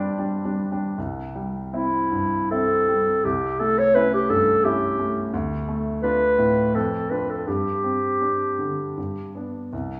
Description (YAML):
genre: classical, romantic duo for clarinet and grand piano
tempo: 75-87 BPM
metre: 3/4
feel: rubato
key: C major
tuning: A4 = 440 Hz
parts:
  - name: dark clarinet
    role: melody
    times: 0.0-9.3 s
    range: E4 to D5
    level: -23 LUFS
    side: equal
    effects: none
  - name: clear baby grand piano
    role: accompaniment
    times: 0.0-10.0 s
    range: C2 to C6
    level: -28 LUFS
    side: equal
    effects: none
room: moderate recital hall reverb, RT60 1.4 s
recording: studio reverb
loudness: -23 LUFS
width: mono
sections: 1.0-10.0 A section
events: none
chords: 0.0 G; 1.0 C; 3.2 A7/C; 5.3 Dm; 6.7 Dm/F; 7.5 Gsus4; 9.0 G